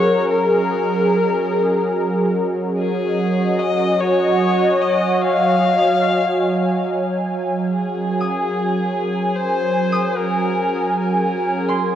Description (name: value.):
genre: ambient.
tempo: 73 BPM.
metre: 3/4.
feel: straight.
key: Gb major.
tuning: A4 = 436 Hz.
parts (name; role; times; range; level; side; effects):
dark electric violin; melody; 0.0-12.0 s; Ab4 to F5; -22 LUFS; left 5 dB; cassette tape, analog delay.
warm analog pad; sustained chords; 0.0-12.0 s; Gb3 to Ab5; -17 LUFS; right 1 dB; chorus, cassette tape.
concert harp; arpeggios; 8.2-12.0 s; C6 to Eb6; -28 LUFS; right 1 dB; cassette tape, analog delay.
room: wet spring reverb, RT60 1.6 s, studio reverb.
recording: home recording on cassette.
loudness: -16 LUFS.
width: side -10 dB against mid.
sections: 0.0-7.7 A section; 7.7-12.0 B section.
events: none.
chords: 0.0 Gb; 7.7 Gbadd9.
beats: | 0.30 1.13 1.95 | 2.77 3.59 4.41 | 5.24 6.06 6.88 | 7.70 8.52 9.35 | 10.17 10.99 11.81.